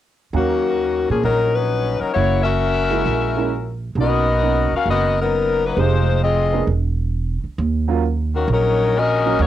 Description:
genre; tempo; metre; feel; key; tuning
jazz, big band swing; 133 BPM; 4/4; swing 68% on 8ths; Eb minor; A4 = 441 Hz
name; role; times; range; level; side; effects
warm grand piano; accompaniment; 0.3-9.4 s; Gb3 to F5; -24 LUFS; right 9 dB; cassette tape
upright bass; bass; 0.3-9.5 s; Fb1 to Bb2; -20 LUFS; right 2 dB; none
clear saxophone section; melody; 0.4-9.5 s; Eb3 to F5; -18 LUFS; left 4 dB; cassette tape
room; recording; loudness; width
light reverb; home recording on cassette; -16 LUFS; side -12 dB against mid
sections
0.3-7.6 A section; 7.6-9.5 B section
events
none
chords
0.3 Ebm7; 2.2 Gb7; 4.0 Bmaj7; 5.8 Fm7; 6.7 N.C.; 7.6 Ebm7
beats
| 0.34 0.79 1.25 1.70 | 2.15 2.60 3.06 3.51 | 3.96 4.42 4.87 5.32 | 5.77 6.22 6.68 7.13 | 7.58 8.03 8.49 8.94 | 9.39

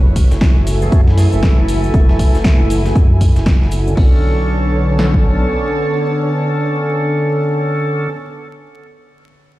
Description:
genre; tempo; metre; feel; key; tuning
deep house; 118 BPM; 4/4; swing 60% on 16ths; B minor; A4 = 440 Hz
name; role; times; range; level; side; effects
soft string machine; sustained chords; 0.0-8.1 s; D3 to C#5; -25 LUFS; equal; ensemble chorus, sidechain pumping
rubbery square bass; bass; 0.0-5.5 s; F#1 to F#2; -16 LUFS; equal; sidechain pumping
warm chamber string section; texture; 0.0-8.3 s; D3 to A5; -25 LUFS; equal; sidechain pumping
dusty soul sampler-style drum kit; drums; 0.2-3.9 s; hi-hat, snare drum; -34 LUFS; equal; sidechain pumping on hats, high-pass filter on hats, high-pass filter on snare
punchy analog drum machine; drums; 0.2-5.2 s; kick drum, snare drum; -12 LUFS; equal; none
punchy analog drum machine; drums; 0.2-4.1 s; crash cymbal, hi-hat, snare drum; -24 LUFS; equal; none
cabasa; percussion; 0.2-4.0 s; none; -38 LUFS; left 4 dB; none
bright tonewheel organ; stabs; 0.8-8.1 s; D3 to A4; -19 LUFS; equal; slow rotary speaker, low-pass filter, tape echo
room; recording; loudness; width
digital ambience; played on a big sound system in a bare room, stone room reverb, vinyl crackle; -12 LUFS; side -16 dB against mid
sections
0.0-4.0 A section; 4.0-8.0 B section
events
filter sweep on tonewheel organ 0.0-4.0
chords
0.0 F#m9; 4.0 Bm9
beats
0.41 0.92 1.43 | 1.94 2.45 2.96 3.46 | 3.97 4.48 4.99 5.50 | 6.01 6.51 7.02 7.53

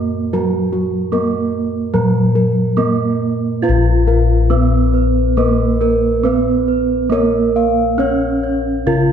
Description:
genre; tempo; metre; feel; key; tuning
Javanese gamelan; 69-77 BPM; 4/4; straight; Bb pelog; A4 = 438 Hz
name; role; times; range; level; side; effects
gamelan-type bronze metallophone; melody; 0.0-9.1 s; Gb3 to F4; -17 LUFS; right 4 dB; none
gamelan-type bossed gongs; bass; 0.0-9.1 s; Bb1 to Bb4; -18 LUFS; left 2 dB; none
gamelan-type bossed gongs; arpeggios; 0.3-9.1 s; Gb4 to F5; -22 LUFS; left 2 dB; none
gamelan-type bronze metallophone; arpeggios; 3.6-9.1 s; Bb4 to F5; -21 LUFS; right 4 dB; none
room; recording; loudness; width
wet scoring stage reverb, RT60 1.5 s; recorded in a church or concert hall; -13 LUFS; side -8 dB against mid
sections
0.0-3.6 A section; 3.6-9.1 B section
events
none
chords
none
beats
| 0.33 1.12 1.94 2.77 | 3.63 4.51 5.38 6.25 | 7.12 7.99 8.86

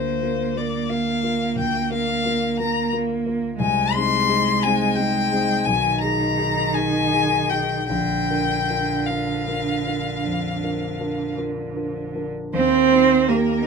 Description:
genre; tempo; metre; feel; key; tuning
classical, slow romantic movement for piano trio; 50-60 BPM (dotted quarters); 12/8; rubato; unclear; A4 = 439 Hz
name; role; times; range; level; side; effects
rich violin; melody; 0.0-13.7 s; Bb4 to C6; -23 LUFS; left 6 dB; none
warm cello; second line; 0.0-13.6 s; D3 to C4; -23 LUFS; right 7 dB; none
dark concert grand piano; accompaniment; 0.0-13.7 s; Bb1 to Bb4; -25 LUFS; left 2 dB; none
room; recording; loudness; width
light reverb; minimal, uncompressed stereo recording; -19 LUFS; side -5 dB against mid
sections
0.0-12.5 A section; 12.5-13.7 B section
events
none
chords
0.0 Bb/D; 3.6 Ab/C; 5.7 Abm/Cb; 7.9 Bb; 12.5 Eb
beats
0.56 1.57 2.59 | 3.60 4.63 5.67 6.75 | 7.89 9.07 10.24 11.37 | 12.53 13.65

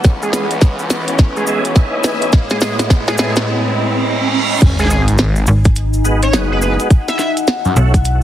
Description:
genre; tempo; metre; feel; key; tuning
glitch hop; 105 BPM; 4/4; swing 62% on 16ths; unclear; A4 = 440 Hz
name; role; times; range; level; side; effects
clear studio string section; sustained chords; 0.0-4.6 s; A2 to E4; -22 LUFS; equal; sidechain pumping
phased detuned saw bass; bass; 0.0-7.7 s; F#1 to F#2; -19 LUFS; equal; phaser, tube saturation, high-pass filter
electronic kick drum; drums; 0.0-8.0 s; none; -10 LUFS; equal; none
glitchy drum kit; drums; 0.0-8.2 s; crash cymbal, hi-hat, snare drum; -19 LUFS; equal; none
cabasa; percussion; 0.0-8.2 s; none; -29 LUFS; left 1 dB; none
riser, reverse cymbal and sub drop; sound effects; 0.0-6.9 s; none; -21 LUFS; right 2 dB; none
deep dark ambient pad; texture; 0.0-8.2 s; D#4 to B5; -23 LUFS; left 2 dB; chorus, built-in reverb, sidechain pumping
sync lead; melody; 0.2-7.3 s; G#4 to E5; -22 LUFS; right 1 dB; lush chorus, digital delay
tonewheel organ; stabs; 1.5-7.9 s; G#3 to G#4; -22 LUFS; equal; chorus vibrato, slow rotary speaker, sidechain pumping, digital delay
slap-like FM bass; bass; 5.5-8.2 s; G#1 to B1; -13 LUFS; equal; none
room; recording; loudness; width
light reverb; heavily compressed radio sound, multiband compression, vinyl crackle; -12 LUFS; side -12 dB against mid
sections
0.0-4.6 A section; 4.6-8.2 B section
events
build-up 0.0-4.6; drum fill 0.0-3.5; riser 0.0-4.6; filter sweep on analog synth lead 0.0-4.6; reverse cymbal 3.5-4.6; drop 4.6-8.2; impact 4.6-6.9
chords
0.0 C#m9; 2.3 Eadd11/A; 4.6 G#m7; 6.9 B7sus4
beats
| 0.05 0.62 1.19 1.76 | 2.33 2.90 3.48 4.05 | 4.62 5.19 5.76 6.33 | 6.90 7.47 8.05

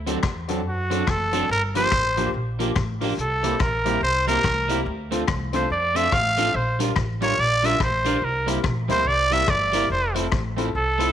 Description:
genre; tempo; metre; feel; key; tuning
ska; 143 BPM; 4/4; swing 60% on 8ths; unclear; A4 = 438 Hz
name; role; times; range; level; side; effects
upright bass; bass; 0.0-11.1 s; F1 to F#2; -28 LUFS; equal; none
electric guitar at the edge of break-up; accompaniment; 0.1-11.1 s; F3 to F4; -29 LUFS; right 11 dB; phaser
warm upright piano; stabs; 0.1-11.1 s; Bb3 to Bb4; -30 LUFS; left 9 dB; slapback echo
street-band drum kit; drums; 0.1-11.1 s; hi-hat, kick drum, rim click; -27 LUFS; left 3 dB; none
growling trumpet; melody; 0.7-11.1 s; F#4 to F5; -22 LUFS; right 1 dB; none
accordion; melody; 11.0-11.1 s; A4; -28 LUFS; right 1 dB; none
room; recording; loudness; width
moderate plate reverb, RT60 1.4 s; 1960s-style stereo with parts hard left and right; -20 LUFS; side -10 dB against mid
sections
0.0-11.1 A section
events
trumpet solo 0.0-11.1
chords
0.0 D7; 1.5 Gm7; 3.2 C7; 4.9 Dm7; 6.5 Bb6; 8.2 C7; 9.9 Fmaj7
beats
0.24 0.66 1.08 | 1.50 1.92 2.34 2.76 | 3.18 3.60 4.02 4.44 | 4.87 5.29 5.71 6.12 | 6.55 6.97 7.39 7.81 | 8.23 8.65 9.07 9.49 | 9.91 10.33 10.75

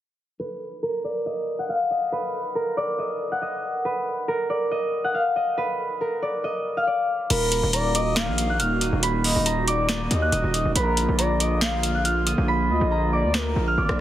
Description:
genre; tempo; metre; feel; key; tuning
hip hop, trap; 139 BPM; 4/4; half-time; Eb harmonic minor; A4 = 440 Hz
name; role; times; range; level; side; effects
concert harp; melody; 0.4-14.0 s; Bb4 to Gb6; -25 LUFS; equal; low-pass filter, tape echo
gliding portamento lead; second line; 7.3-14.0 s; Bb4 to F5; -27 LUFS; left 2 dB; chorus, tape echo
hollow soft pad; sustained chords; 7.3-14.0 s; D3 to Gb4; -28 LUFS; right 2 dB; chorus
distorted 808-style bass; bass; 7.3-14.0 s; Eb1 to Eb2; -24 LUFS; equal; distortion
booming analog drum machine; drums; 7.3-14.0 s; crash cymbal, finger snaps, hi-hat, rim click, snare drum; -26 LUFS; equal; none
room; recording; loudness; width
light reverb; heavily compressed radio sound, multiband compression; -21 LUFS; side -12 dB against mid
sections
0.4-7.3 A section; 7.3-14.0 B section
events
filter sweep on harp 0.4-7.3; hi-hats muted 12.5-14.0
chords
0.4 N.C.; 7.3 Ebm; 10.8 Bb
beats
| 0.40 0.83 1.26 1.69 | 2.12 2.55 2.98 3.42 | 3.85 4.28 4.71 5.14 | 5.58 6.01 6.44 6.87 | 7.30 7.73 8.16 8.60 | 9.03 9.46 9.89 10.32 | 10.76 11.19 11.62 12.05 | 12.48 12.91 13.35 13.78

